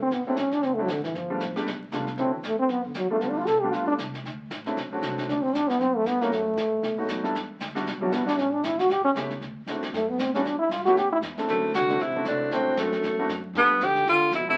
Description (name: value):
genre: jazz, small-group swing and bop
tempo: 232 BPM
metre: 4/4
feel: swing 58% on 8ths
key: D mixolydian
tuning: A4 = 440 Hz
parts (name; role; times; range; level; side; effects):
- mellow trombone; second line; 0.0-14.6 s; F#2 to A4; -27 LUFS; equal; none
- upright bass; bass; 0.0-14.6 s; E1 to B2; -44 LUFS; equal; none
- jazz brush drum kit; drums; 0.1-14.6 s; brushed snare drum, hi-hat, snare drum; -38 LUFS; equal; none
- warm concert grand piano; accompaniment; 0.3-14.6 s; F#3 to A4; -33 LUFS; equal; none
- warm tenor saxophone; melody; 11.5-14.6 s; A3 to G4; -25 LUFS; equal; none
room: wet club reverb, RT60 0.6 s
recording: very old 78 rpm record, vinyl crackle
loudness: -26 LUFS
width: mono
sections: 0.0-11.5 A section; 11.5-14.6 B section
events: trombone solo 0.0-11.5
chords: 0.0 D7; 1.1 G7; 2.2 D7; 3.2 G7; 4.2 D7; 6.3 F#m; 6.8 B7; 7.3 Em7; 8.4 A7; 9.4 D7; 10.4 Em; 11.0 A5; 11.5 D7; 13.5 G7